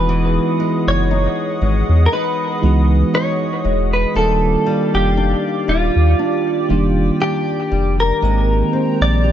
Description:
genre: contemporary R&B.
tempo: 59 BPM.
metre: 4/4.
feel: swing 54% on 16ths.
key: unclear.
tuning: A4 = 440 Hz.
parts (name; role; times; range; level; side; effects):
direct-recorded clean electric guitar; melody; 0.0-9.3 s; F4 to D5; -20 LUFS; right 1 dB; lush chorus, analog delay.
bell-like tine electric piano; accompaniment; 0.0-9.3 s; Eb3 to G4; -21 LUFS; right 4 dB; phaser, analog delay.
hollow soft pad; sustained chords; 0.0-9.3 s; Ab3 to D#6; -28 LUFS; right 1 dB; chorus.
flamenco guitar; arpeggios; 0.0-9.3 s; Eb3 to G4; -24 LUFS; left 9 dB; analog delay.
saturated sub bass; bass; 0.0-9.3 s; Eb1 to E2; -16 LUFS; equal; none.
room: digital ambience.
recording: echo-heavy mix, nothing above 7.8 kHz.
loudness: -14 LUFS.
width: side -10 dB against mid.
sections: 0.0-9.3 A section.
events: none.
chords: 0.0 Emaj9; 4.2 Ebmaj9; 8.2 Abmaj9.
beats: | 0.09 1.10 2.12 3.14 | 4.15 5.17 6.19 7.21 | 8.22 9.24.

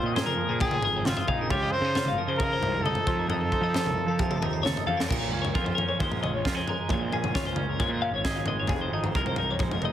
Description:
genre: math rock and midwest emo.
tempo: 133 BPM.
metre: 4/4.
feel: straight.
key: Bb minor from 5.1 s.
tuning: A4 = 440 Hz.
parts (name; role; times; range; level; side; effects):
warm trumpet; melody; 0.0-4.6 s; Eb4 to C5; -29 LUFS; equal; plate reverb.
twangy electric guitar; accompaniment; 0.0-9.9 s; F2 to Bb4; -33 LUFS; right 6 dB; none.
twelve-string electric guitar; arpeggios; 0.0-9.9 s; G4 to F5; -31 LUFS; left 6 dB; phaser, analog delay.
fuzz picked electric bass; bass; 0.0-9.9 s; F1 to F3; -31 LUFS; equal; overdrive.
crisp fusion drum kit; drums; 0.2-9.9 s; crash cymbal, kick drum, snare drum, toms; -29 LUFS; equal; none.
room: light reverb.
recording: heavily compressed radio sound.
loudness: -24 LUFS.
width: side -11 dB against mid.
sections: 0.0-5.1 A section; 5.1-9.9 B section.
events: drum fill 4.9.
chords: 0.0 Bb9sus4; 1.5 Dbmaj9; 3.1 F7; 5.1 Bbm7; 8.7 Fm7.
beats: 0.15 0.60 1.05 | 1.50 1.95 2.40 2.85 | 3.30 3.75 4.20 4.64 | 5.09 5.54 6.00 6.45 | 6.89 7.35 7.80 8.25 | 8.70 9.15 9.60.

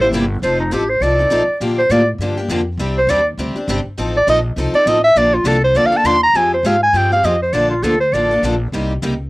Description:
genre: acoustic string swing (jazz manouche).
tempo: 202 BPM.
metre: 4/4.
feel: swing 57% on 8ths.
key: Bb major.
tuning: A4 = 440 Hz.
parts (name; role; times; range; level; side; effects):
clear clarinet; melody; 0.0-8.4 s; Eb4 to C6; -13 LUFS; right 1 dB; cassette tape.
picked steel-string acoustic guitar; accompaniment; 0.0-9.1 s; C3 to A4; -20 LUFS; left 2 dB; cassette tape.
picked steel-string acoustic guitar; accompaniment; 0.0-9.1 s; C3 to A4; -25 LUFS; right 2 dB; cassette tape.
upright bass; bass; 0.0-9.3 s; F1 to Bb2; -21 LUFS; equal; transformer saturation.
room: light reverb.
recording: home recording on cassette.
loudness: -13 LUFS.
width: side -21 dB against mid.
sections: 0.0-6.3 A section; 6.3-9.3 A section.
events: clarinet solo 0.0-9.3.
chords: 0.4 F7; 1.6 Bb6; 2.8 Csus2; 4.0 F7; 5.2 Bbmaj7; 6.3 Fmadd9; 7.5 Bbmaj7; 8.7 Cm7.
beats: 0.13 | 0.43 0.72 1.02 1.31 | 1.61 1.91 2.20 2.50 | 2.79 3.09 3.38 3.68 | 3.98 4.27 4.57 4.87 | 5.16 5.46 5.76 6.05 | 6.35 6.65 6.94 7.24 | 7.54 7.83 8.13 8.43 | 8.73 9.02.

